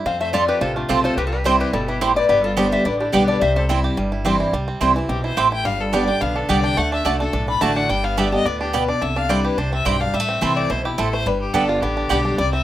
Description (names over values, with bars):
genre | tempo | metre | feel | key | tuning
bluegrass | 214 BPM | 4/4 | straight | C major | A4 = 439 Hz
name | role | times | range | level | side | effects
bluegrass banjo | melody | 0.0-12.6 s | D3 to G4 | -27 LUFS | right 4 dB | none
picked steel-string acoustic guitar | accompaniment | 0.0-12.6 s | F2 to G4 | -23 LUFS | left 1 dB | none
lap resonator guitar | melody | 0.1-3.6 s | F4 to F5 | -21 LUFS | left 3 dB | none
rich fiddle | second line | 0.1-12.6 s | D4 to B5 | -24 LUFS | left 4 dB | none
upright bass | bass | 0.1-12.6 s | G1 to F2 | -26 LUFS | equal | none
mandolin | stabs | 0.3-12.2 s | A3 to A5 | -20 LUFS | right 6 dB | none
room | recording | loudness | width
light reverb | rough home demo mix | -17 LUFS | side -13 dB against mid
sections
0.0-4.5 A section; 4.5-12.6 B section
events
fiddle solo 4.5-12.6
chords
0.1 F; 1.2 C; 2.3 G; 3.4 C; 5.7 G; 6.8 D; 7.9 G; 9.0 Cadd9; 10.1 Am; 11.3 G